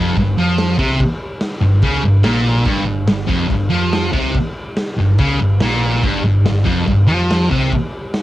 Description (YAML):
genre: garage rock duo or trio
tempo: 143 BPM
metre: 4/4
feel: straight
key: G minor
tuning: A4 = 443 Hz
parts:
  - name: thick fuzz guitar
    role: riff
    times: 0.0-7.7 s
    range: F2 to F3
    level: -14 LUFS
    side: equal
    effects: distortion, cassette tape
  - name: hollow-body short-scale fingered electric bass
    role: bass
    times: 0.0-7.7 s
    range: F1 to F2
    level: -22 LUFS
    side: equal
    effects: none
  - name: raw garage drum kit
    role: drums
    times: 0.2-8.2 s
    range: crash cymbal, kick drum, snare drum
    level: -21 LUFS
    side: equal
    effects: cassette tape
room: little or no reverb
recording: home recording on cassette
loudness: -13 LUFS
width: side -15 dB against mid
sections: 0.0-8.2 A section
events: none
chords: 0.0 Gm